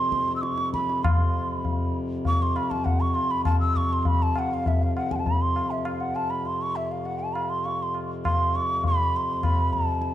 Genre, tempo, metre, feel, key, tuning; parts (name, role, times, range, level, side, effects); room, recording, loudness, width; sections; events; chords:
indian classical, Hindustani; 100 BPM; 4/4; straight; F raga puriya dhanashri; A4 = 440 Hz
mellow bansuri; melody; 0.0-10.1 s; E5 to E6; -26 LUFS; right 2 dB
pedal harmonium; drone; 0.0-10.1 s; F2 to C3; -31 LUFS; left 2 dB
tabla; percussion; 0.1-10.1 s; -26 LUFS; left 1 dB
moderate concert hall reverb, RT60 2.0 s; dark, warm production; -23 LUFS; side -12 dB against mid
0.0-10.1 A section